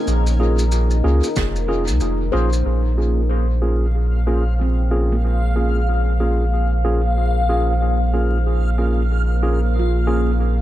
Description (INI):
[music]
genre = ambient dub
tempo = 93 BPM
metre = 4/4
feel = swing 60% on 16ths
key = Bb minor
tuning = A4 = 440 Hz
[part]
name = deep dark ambient pad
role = sustained chords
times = 0.0-10.6 s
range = Bb3 to C5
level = -27 LUFS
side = left 2 dB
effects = chorus, built-in reverb
[part]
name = handpan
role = arpeggios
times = 0.0-10.6 s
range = Bb3 to C5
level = -31 LUFS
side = equal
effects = low-pass filter, dub echo
[part]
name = backwards swelling texture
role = texture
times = 0.0-10.6 s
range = Db4 to F5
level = -28 LUFS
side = left 1 dB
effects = built-in reverb
[part]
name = warm sub bass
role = bass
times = 0.1-10.6 s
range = F1 to Db2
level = -18 LUFS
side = equal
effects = none
[part]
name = shaker and snare drum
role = drums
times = 0.1-2.6 s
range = none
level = -30 LUFS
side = right 3 dB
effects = low-pass filter on snare, low-pass filter on perc, low-pass filter on room, dub echo
[part]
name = tine electric piano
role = stabs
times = 0.4-10.3 s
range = Bb3 to Ab4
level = -24 LUFS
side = right 1 dB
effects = overdrive, low-pass filter, dub echo
[part]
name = electronic kick drum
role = drums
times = 1.4-1.5 s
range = none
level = -25 LUFS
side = equal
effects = overdrive
[sound]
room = studio reverb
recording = echo-heavy mix, vinyl crackle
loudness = -16 LUFS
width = side -14 dB against mid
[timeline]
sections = 0.0-2.7 A section; 2.7-10.6 B section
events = filter sweep on handpan 2.7-10.6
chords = 0.0 Bbm7